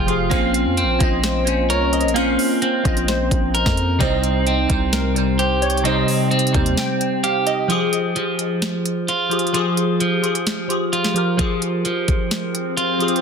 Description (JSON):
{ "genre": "hip hop, trap", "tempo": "130 BPM", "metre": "4/4", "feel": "half-time", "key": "F minor", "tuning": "A4 = 441 Hz", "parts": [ { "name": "glassy wavetable pluck", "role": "second line", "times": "0.0-7.7 s", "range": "Bb4 to G5", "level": "-26 LUFS", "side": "equal", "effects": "chorus, ping-pong delay" }, { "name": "glassy digital keys", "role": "accompaniment", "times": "0.0-13.2 s", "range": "C3 to Eb5", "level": "-21 LUFS", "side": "left 1 dB", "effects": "chorus" }, { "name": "electric guitar at the edge of break-up", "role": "arpeggios", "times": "0.0-13.2 s", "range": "F3 to Bb4", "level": "-22 LUFS", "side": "right 2 dB", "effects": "ping-pong delay" }, { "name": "growling 808-style bass", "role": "bass", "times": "0.0-6.8 s", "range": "F1 to F2", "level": "-22 LUFS", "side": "equal", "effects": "none" }, { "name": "trap drum kit", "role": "drums", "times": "0.1-13.2 s", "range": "hi-hat, kick drum, snare drum", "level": "-23 LUFS", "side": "equal", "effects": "overdrive" }, { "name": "swell", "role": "sound effects", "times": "12.2-13.2 s", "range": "none", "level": "-26 LUFS", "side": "left 5 dB", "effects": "none" } ], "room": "light reverb, digital ambience", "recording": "dense, heavily limited modern master", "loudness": "-17 LUFS", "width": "side -6 dB against mid", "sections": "0.0-7.7 A section; 7.7-13.2 B section", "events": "break 6.8-7.7; swell 12.2-13.2", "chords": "0.3 Bbmadd9; 4.0 Cm; 7.7 Fmadd9" }